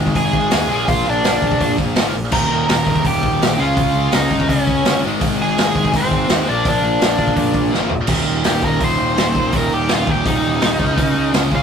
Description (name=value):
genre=punk rock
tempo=166 BPM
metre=4/4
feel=straight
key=unclear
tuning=A4 = 438 Hz
part: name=crunchy overdriven guitar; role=riff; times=0.0-11.6 s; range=Eb2 to Db4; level=-21 LUFS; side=equal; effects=none
part: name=heavy high-gain guitar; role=riff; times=0.0-11.6 s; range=Eb2 to Db4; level=-25 LUFS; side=equal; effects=distortion
part: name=fuzz picked electric bass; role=bass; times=0.0-11.6 s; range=Eb1 to Eb2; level=-23 LUFS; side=equal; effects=overdrive
part: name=raw garage drum kit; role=drums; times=0.1-11.6 s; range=crash cymbal, hi-hat, kick drum, snare drum, toms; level=-19 LUFS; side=equal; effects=none
part: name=biting overdriven guitar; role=melody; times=0.2-11.6 s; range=C4 to Bb5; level=-19 LUFS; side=equal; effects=none
room=light reverb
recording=rough rehearsal-room recording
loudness=-14 LUFS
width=side -7 dB against mid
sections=0.0-8.1 A section; 8.1-11.6 B section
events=drum fill 7.7-8.1; overdriven electric guitar solo 8.1-11.6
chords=0.0 Ab5; 0.7 Bb; 2.3 Eb; 3.6 Db; 5.0 Ab; 6.5 Bb; 8.1 Eb5; 10.8 Db5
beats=0.16 0.52 | 0.88 1.24 1.60 1.96 | 2.32 2.68 3.04 3.40 | 3.76 4.12 4.48 4.84 | 5.21 5.57 5.93 6.29 | 6.65 7.01 7.37 7.73 | 8.09 8.45 8.81 9.17 | 9.54 9.90 10.26 10.62 | 10.98 11.34